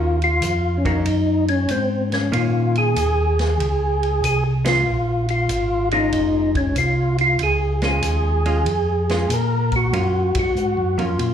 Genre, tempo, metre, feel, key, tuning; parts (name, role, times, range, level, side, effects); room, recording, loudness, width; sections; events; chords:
soul jazz organ trio; 95 BPM; 4/4; swing 67% on 8ths; Bb minor; A4 = 440 Hz
percussive tonewheel organ; melody; 0.0-11.3 s; C4 to Bb4; -20 LUFS; equal; slow rotary speaker, chorus vibrato, slapback echo
hollow-body jazz guitar; accompaniment; 0.0-11.3 s; Eb3 to Gb4; -28 LUFS; right 4 dB; slapback echo
mellow tonewheel organ; bass; 0.0-11.3 s; F1 to Bb2; -21 LUFS; equal; slow rotary speaker
vintage drum kit; drums; 0.2-11.3 s; hi-hat, kick drum, ride cymbal, snare drum; -29 LUFS; equal
light reverb, small room ambience; live gig heard through the venue's PA, club reverb; -17 LUFS; side -8 dB against mid
0.0-11.3 A section
band accent 4.5-4.9, 10.2-10.6
0.0 Ebm7; 4.9 Bbm7; 9.9 Gbmaj7